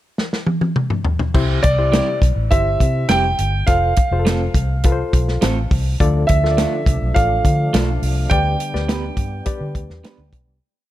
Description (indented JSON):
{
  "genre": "uptempo 1960s-style soul",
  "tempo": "104 BPM",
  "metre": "4/4",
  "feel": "straight",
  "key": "G mixolydian",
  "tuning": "A4 = 440 Hz",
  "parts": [
    { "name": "warm soul drum kit", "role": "drums", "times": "0.2-10.5 s", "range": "crash cymbal, hi-hat, kick drum, snare drum, toms", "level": "-19 LUFS", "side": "equal", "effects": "none" },
    { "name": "barky reed electric piano", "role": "accompaniment", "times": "1.3-10.1 s", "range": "C3 to E5", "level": "-25 LUFS", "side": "left 5 dB", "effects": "overdrive, fast tremolo" },
    { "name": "vintage muted fingered electric bass", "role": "bass", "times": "1.3-10.6 s", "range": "F1 to D3", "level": "-20 LUFS", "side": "equal", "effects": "none" },
    { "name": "clear grand piano", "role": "melody", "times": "1.6-10.3 s", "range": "D5 to G5", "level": "-21 LUFS", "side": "right 2 dB", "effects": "analog delay" },
    { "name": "electric guitar through a small old amp", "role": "stabs", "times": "1.9-10.2 s", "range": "G3 to B4", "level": "-26 LUFS", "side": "right 5 dB", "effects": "none" },
    { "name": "overdriven tonewheel organ", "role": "sustained chords", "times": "6.0-10.6 s", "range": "F3 to D4", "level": "-30 LUFS", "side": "right 1 dB", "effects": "slow rotary speaker, chorus vibrato" }
  ],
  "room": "small room reverb",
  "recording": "none",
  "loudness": "-15 LUFS",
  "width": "side -14 dB against mid",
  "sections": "0.0-1.3 pickup bar; 1.3-10.6 verse",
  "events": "drum fill 0.2-1.3; fade-out 8.3-10.6",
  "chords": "0.0 N.C.; 1.3 C; 3.7 F; 6.0 Dm; 8.3 G/D"
}